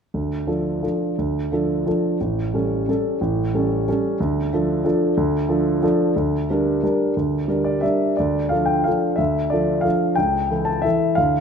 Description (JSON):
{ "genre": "classical, piano waltz", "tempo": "165-193 BPM", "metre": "3/4", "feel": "rubato", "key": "D minor", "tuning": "A4 = 441 Hz", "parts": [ { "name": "warm grand piano", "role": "solo", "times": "0.1-11.4 s", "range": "A1 to A5", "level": "-18 LUFS", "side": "equal", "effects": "none" } ], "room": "moderate scoring stage reverb, RT60 1.8 s", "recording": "none", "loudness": "-18 LUFS", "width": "side -6 dB against mid", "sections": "0.1-8.2 A section; 8.2-11.4 B section", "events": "none", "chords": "0.1 Dm; 2.2 A7; 4.2 Dm; 6.2 Gm/D; 8.2 Dm; 10.2 A7/C#" }